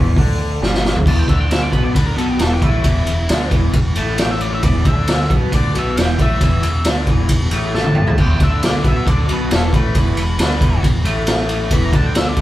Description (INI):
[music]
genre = blues rock power trio and southern rock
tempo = 135 BPM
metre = 4/4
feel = straight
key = E minor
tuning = A4 = 440 Hz
[part]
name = raw garage guitar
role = riff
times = 0.0-12.4 s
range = E2 to D4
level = -22 LUFS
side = left 2 dB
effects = overdrive
[part]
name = growling picked electric bass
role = bass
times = 0.0-12.4 s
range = E1 to D2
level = -20 LUFS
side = equal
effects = overdrive
[part]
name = raw garage drum kit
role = drums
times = 0.2-12.4 s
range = crash cymbal, hi-hat, kick drum, ride cymbal, snare drum, toms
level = -16 LUFS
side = equal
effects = none
[part]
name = octave-fuzz lead guitar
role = melody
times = 1.1-12.4 s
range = E4 to B5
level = -25 LUFS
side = left 1 dB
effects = distortion
[sound]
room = light reverb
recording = band playing live in one room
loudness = -14 LUFS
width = side -15 dB against mid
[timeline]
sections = 0.0-1.1 A section; 1.1-12.4 B section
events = drum fill 0.6-1.1, 7.7-8.2; lead electric guitar solo 1.1-12.4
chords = 0.0 Em; 1.1 E5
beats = 0.17 0.61 | 1.06 1.51 1.95 2.40 | 2.85 3.29 3.74 4.18 | 4.63 5.08 5.52 5.97 | 6.41 6.86 7.30 7.74 | 8.18 8.63 9.07 9.51 | 9.95 10.39 10.84 11.28 | 11.72 12.16